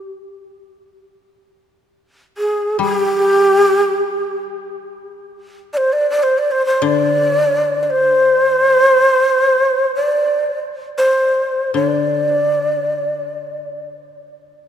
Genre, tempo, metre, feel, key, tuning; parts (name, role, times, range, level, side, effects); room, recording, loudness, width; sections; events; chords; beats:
japanese traditional, Japanese chamber music; free time; A4 = 441 Hz
breathy mellow shakuhachi; melody; 0.0-13.9 s; G4 to D5; -14 LUFS; equal
koto; accompaniment; 2.8-14.7 s; D3 to G3; -23 LUFS; left 7 dB
moderate church reverb, RT60 3.5 s; minimal, uncompressed stereo recording; -13 LUFS; side -9 dB against mid
0.0-4.6 A section; 4.6-14.7 A section
free time